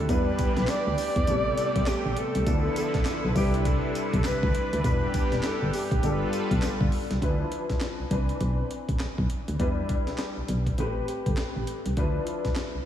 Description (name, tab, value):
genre	R&B, new jack swing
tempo	101 BPM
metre	4/4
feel	swing 61% on 16ths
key	D dorian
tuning	A4 = 441 Hz
part	warm alto saxophone	melody	0.0-6.6 s	G4 to D5	-30 LUFS	equal	analog delay
part	warm concert grand piano	accompaniment	0.0-12.9 s	E3 to B4	-31 LUFS	left 3 dB	ensemble chorus
part	brassy analog pad	sustained chords	0.0-7.2 s	C3 to B4	-33 LUFS	right 1 dB	chorus
part	solid FM bass	bass	0.0-12.8 s	E1 to E2	-28 LUFS	equal	none
part	breakbeat sampler-style drum kit	drums	0.1-12.7 s	handclaps, hi-hat, kick drum, snare drum, tambourine	-29 LUFS	equal	none
room	moderate lush hall reverb, RT60 2.9 s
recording	dreamy mix soaked in reverb, studio ambience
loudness	-24 LUFS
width	side -10 dB against mid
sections	0.0-7.2 A section; 7.2-12.9 B section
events	none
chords	0.1 Em7; 1.3 Am9; 2.5 Dm69; 3.4 Cmaj9; 4.8 Em7; 6.0 G9; 7.2 Dm69; 8.1 Cmaj9; 9.6 Em7; 10.8 Am9; 12.0 Dm69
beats	| 0.09 0.68 1.28 1.87 | 2.47 3.06 3.65 4.25 | 4.84 5.44 6.03 6.62 | 7.22 7.81 8.41 9.00 | 9.60 10.19 10.78 11.38 | 11.97 12.56